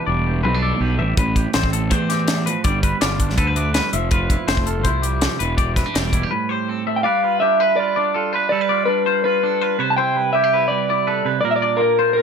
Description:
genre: math rock and midwest emo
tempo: 164 BPM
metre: 4/4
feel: straight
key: unclear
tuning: A4 = 440 Hz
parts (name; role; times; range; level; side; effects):
- twangy electric guitar; accompaniment; 0.0-12.2 s; A2 to B4; -24 LUFS; right 9 dB; none
- twangy electric guitar; arpeggios; 0.0-12.2 s; G4 to E5; -23 LUFS; left 7 dB; wide subtle chorus
- fuzz fingered electric bass; bass; 0.1-6.2 s; E1 to E2; -22 LUFS; equal; overdrive
- crisp fusion drum kit; drums; 1.2-6.2 s; hi-hat, kick drum, snare drum; -21 LUFS; equal; none
- electric guitar through a small old amp; melody; 7.0-12.2 s; Bb4 to A5; -18 LUFS; equal; none
room: light reverb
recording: none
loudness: -16 LUFS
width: side -6 dB against mid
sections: 0.0-7.0 A section; 7.0-12.2 B section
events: break 6.3-7.0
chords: 0.0 Em7; 1.2 Am9; 2.6 G7; 3.9 Fmaj7; 5.4 Em7; 6.3 Am7; 7.0 G7; 9.8 Cmaj7; 11.4 Bb

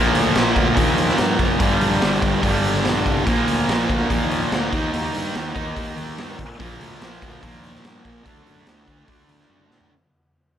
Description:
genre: blues rock power trio and southern rock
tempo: 144 BPM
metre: 4/4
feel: straight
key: unclear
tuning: A4 = 441 Hz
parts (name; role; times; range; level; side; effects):
- thick fuzz guitar; riff; 0.0-9.9 s; G2 to Eb4; -20 LUFS; equal; distortion
- fuzz fingered electric bass; bass; 0.0-9.9 s; F#1 to Bb2; -27 LUFS; left 1 dB; overdrive
- raw garage drum kit; drums; 0.1-9.9 s; hi-hat, kick drum, snare drum, toms; -24 LUFS; equal; none
room: light reverb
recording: none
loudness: -17 LUFS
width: side -10 dB against mid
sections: 0.0-9.9 A section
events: fade-out 0.0-9.9; drum fill 9.5-9.9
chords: 0.0 Bb; 1.6 Gm; 3.3 Bb; 4.7 Eb; 6.6 Bb; 8.3 D

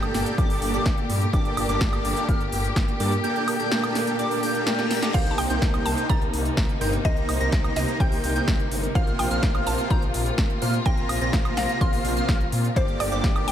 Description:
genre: EDM, festival progressive house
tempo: 126 BPM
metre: 4/4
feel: straight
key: G minor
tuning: A4 = 442 Hz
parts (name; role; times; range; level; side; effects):
- rich studio string section; sustained chords; 0.0-13.5 s; Bb2 to A4; -29 LUFS; left 1 dB; sidechain pumping
- plucky unison lead; arpeggios; 0.0-13.5 s; D6 to Bb6; -32 LUFS; equal; cassette tape, sidechain pumping, tape echo
- dense compressed supersaw; riff; 0.0-13.5 s; Bb3 to Bb5; -29 LUFS; right 1 dB; sidechain pumping, tape echo
- wide detuned saw bass; bass; 0.0-13.5 s; G1 to Bb2; -28 LUFS; equal; chorus, tube saturation, sidechain pumping
- big-room dance drum kit; drums; 0.0-13.5 s; crash cymbal, hi-hat, snare drum, woodblock; -30 LUFS; right 1 dB; none
- electronic kick drum; drums; 0.4-13.3 s; none; -23 LUFS; equal; none
- reverse cymbal; sound effects; 4.6-5.1 s; none; -40 LUFS; left 5 dB; none
- mallet-like synth pluck; melody; 5.1-13.5 s; C5 to C6; -32 LUFS; equal; chorus, tape echo
room: moderate cathedral reverb, RT60 5.5 s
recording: dreamy mix soaked in reverb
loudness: -21 LUFS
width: side -10 dB against mid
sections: 0.0-13.5 A section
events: reverse cymbal 4.6-5.1; drum fill 4.8-5.1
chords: 0.0 Gmadd9; 5.1 Cm7; 9.0 Bbsus2; 12.8 Gmadd9

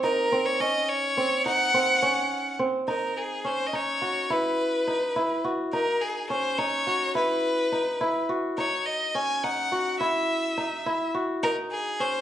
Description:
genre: progressive instrumental, progressive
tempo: 210 BPM (eighths)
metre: 5/8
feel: straight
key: unclear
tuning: A4 = 441 Hz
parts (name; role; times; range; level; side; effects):
- bright violin; melody; 0.0-12.2 s; Ab4 to Ab5; -26 LUFS; left 1 dB; none
- kora; arpeggios; 0.0-12.2 s; C4 to Gb4; -27 LUFS; right 1 dB; none
room: moderate large studio reverb, RT60 0.9 s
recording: band playing live in one room, nothing above 10.4 kHz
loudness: -23 LUFS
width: side -11 dB against mid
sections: 0.0-2.9 A section; 2.9-12.2 B section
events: none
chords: 0.0 Dbmaj7sus2/C; 2.9 Dbsus24; 4.3 Esus2; 5.7 Dbsus24; 7.2 Esus2; 8.6 Dbsus24; 10.0 Esus2; 11.4 Ab7

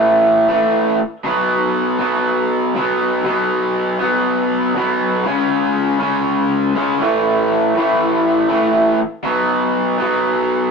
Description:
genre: rock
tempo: 120 BPM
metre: 4/4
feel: straight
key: unclear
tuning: A4 = 442 Hz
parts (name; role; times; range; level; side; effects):
- raw garage guitar; solo; 0.0-10.7 s; A2 to C#4; -14 LUFS; equal; overdrive
room: moderate studio reverb, RT60 0.6 s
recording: rough rehearsal-room recording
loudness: -14 LUFS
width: side -5 dB against mid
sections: 0.0-10.7 A section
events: none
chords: 0.0 A5; 1.2 B5; 5.3 C#5; 7.0 A5; 9.3 B5

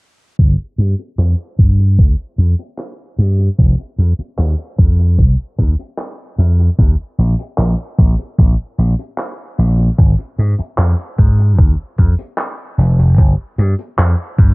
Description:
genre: vaporwave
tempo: 75 BPM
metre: 4/4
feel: straight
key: unclear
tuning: A4 = 437 Hz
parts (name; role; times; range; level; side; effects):
- vintage slap bass; bass; 0.4-14.5 s; F1 to Ab2; -12 LUFS; equal; tube saturation
- electronic kick drum; drums; 0.4-14.5 s; none; -11 LUFS; equal; vintage 12-bit sampler grit
- unplugged drum kit; drums; 0.4-14.5 s; handclaps, hi-hat; -27 LUFS; equal; vintage 12-bit sampler grit
room: little or no reverb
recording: cassette tape, low-pass filter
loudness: -12 LUFS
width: side -28 dB against mid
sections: 0.4-14.5 A section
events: filter sweep 0.4-14.5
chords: none

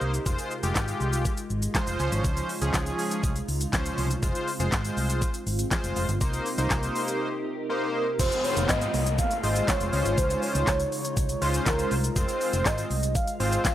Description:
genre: dance-pop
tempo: 121 BPM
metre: 4/4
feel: straight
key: F minor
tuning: A4 = 439 Hz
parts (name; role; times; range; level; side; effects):
- big bright polysynth; accompaniment; 0.0-13.7 s; F3 to C5; -30 LUFS; equal; chorus, sidechain pumping
- glassy FM pad; sustained chords; 0.0-13.7 s; C3 to Bb4; -34 LUFS; right 1 dB; ensemble chorus, built-in reverb, sidechain pumping
- vintage muted fingered electric bass; bass; 0.0-13.6 s; F1 to Db2; -28 LUFS; equal; sidechain pumping
- pop drum kit; drums; 0.0-13.7 s; crash cymbal, handclaps, hi-hat, kick drum, shaker, snare drum; -28 LUFS; equal; none
- tube shaker; percussion; 0.3-13.7 s; none; -42 LUFS; left 2 dB; none
- warm velvety synth lead; melody; 7.7-13.7 s; Bb4 to F5; -29 LUFS; equal; chorus, analog delay
- downlifter; sound effects; 8.2-12.2 s; none; -35 LUFS; right 2 dB; none
room: little or no reverb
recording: dry, gritty hardware recording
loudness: -24 LUFS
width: side -12 dB against mid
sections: 0.0-8.2 A section; 8.2-13.7 B section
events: none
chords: 0.3 Fm; 2.0 Dbmaj7; 4.2 Fm; 6.2 Cm7; 8.2 Fm; 9.9 Dbmaj7; 12.2 Fm

